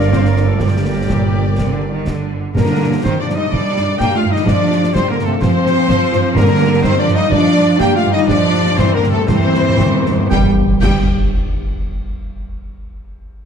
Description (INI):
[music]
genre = cinematic, heroic adventure film score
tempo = 114-128 BPM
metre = 4/4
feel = straight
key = G minor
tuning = A4 = 442 Hz
[part]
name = warm symphonic violin section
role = melody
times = 0.0-11.1 s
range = A4 to G5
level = -23 LUFS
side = left 4 dB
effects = none
[part]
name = bright oboe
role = second line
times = 0.0-11.0 s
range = A4 to G5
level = -29 LUFS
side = right 1 dB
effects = none
[part]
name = clear clarinet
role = second line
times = 0.0-2.3 s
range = Bb4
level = -29 LUFS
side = left 2 dB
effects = none
[part]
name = silver concert flute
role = second line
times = 0.0-11.1 s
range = G4 to G5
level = -29 LUFS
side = left 1 dB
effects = none
[part]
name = warm symphonic violin section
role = second line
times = 0.0-11.1 s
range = G4 to G5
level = -27 LUFS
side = left 3 dB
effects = none
[part]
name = rich symphonic viola section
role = accompaniment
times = 0.0-11.1 s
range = A3 to D5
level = -25 LUFS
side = right 1 dB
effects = none
[part]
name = dark French horn section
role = sustained chords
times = 0.0-10.5 s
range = G3 to G4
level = -20 LUFS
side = left 4 dB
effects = none
[part]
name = concert harp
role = arpeggios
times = 0.0-11.1 s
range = G2 to E6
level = -27 LUFS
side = left 8 dB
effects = none
[part]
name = warm trumpet section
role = stabs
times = 0.0-11.0 s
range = G4 to G5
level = -25 LUFS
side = right 2 dB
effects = none
[part]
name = rich symphonic cello section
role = bass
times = 0.0-11.1 s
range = G2 to Bb3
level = -19 LUFS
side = right 3 dB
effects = none
[part]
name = warm studio double bass section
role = bass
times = 0.0-11.1 s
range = G1 to G2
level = -20 LUFS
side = right 4 dB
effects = none
[part]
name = concert snare drum, concert bass drum and clash cymbals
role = drums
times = 0.0-11.1 s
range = none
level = -23 LUFS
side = equal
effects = none
[part]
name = timpani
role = percussion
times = 0.6-3.2, 6.3-11.1 s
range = G2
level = -21 LUFS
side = right 1 dB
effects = none
[part]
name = tam-tam, concert snare drum, concert bass drum and clash cymbals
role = percussion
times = 2.6-4.4, 10.3-11.8 s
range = none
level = -26 LUFS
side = equal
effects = none
[sound]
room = wet scoring stage reverb, RT60 1.9 s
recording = dark, warm production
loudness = -12 LUFS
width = side -7 dB against mid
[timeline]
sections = 0.0-2.6 A section; 2.6-10.3 B section; 10.3-12.4 C section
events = band accent 2.6-3.0, 10.3-10.8; slowing down 5.4-10.3; timpani fill 8.3-10.3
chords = 0.0 Bb/G; 0.6 Gm; 4.5 F/G; 6.4 Bb/G; 8.3 C/G; 10.3 Gm